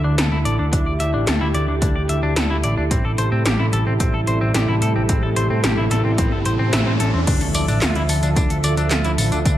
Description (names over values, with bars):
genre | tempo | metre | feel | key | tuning
synthwave | 110 BPM | 4/4 | straight | D minor | A4 = 440 Hz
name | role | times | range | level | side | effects
warm analog pad | sustained chords | 0.0-9.6 s | C3 to E5 | -24 LUFS | right 2 dB | wide subtle chorus, sidechain pumping
clean electric guitar | arpeggios | 0.0-9.6 s | C4 to E5 | -25 LUFS | left 2 dB | low-pass filter, tape echo
hollow-body short-scale picked electric bass | bass | 0.0-9.6 s | G1 to A2 | -20 LUFS | equal | none
80s electronic pad drums | drums | 0.2-9.6 s | crash cymbal, handclaps, hi-hat, snare drum, tambourine | -23 LUFS | equal | overdrive
electronic kick drum | drums | 0.7-9.6 s | none | -20 LUFS | equal | overdrive
riser and impact | sound effects | 5.0-9.5 s | none | -30 LUFS | left 1 dB | none
room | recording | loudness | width
light reverb, digital ambience | lossy compression artefacts | -16 LUFS | side -12 dB against mid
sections
0.0-7.3 A section; 7.3-9.6 B section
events
riser 5.0-7.3; band accent 6.7; impact 7.3-9.5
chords
0.0 Dsus2; 2.9 Am7; 7.3 Dmadd9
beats
0.18 | 0.73 1.27 1.82 2.36 | 2.91 3.45 4.00 4.54 | 5.09 5.64 6.18 6.73 | 7.27 7.82 8.36 8.91 | 9.45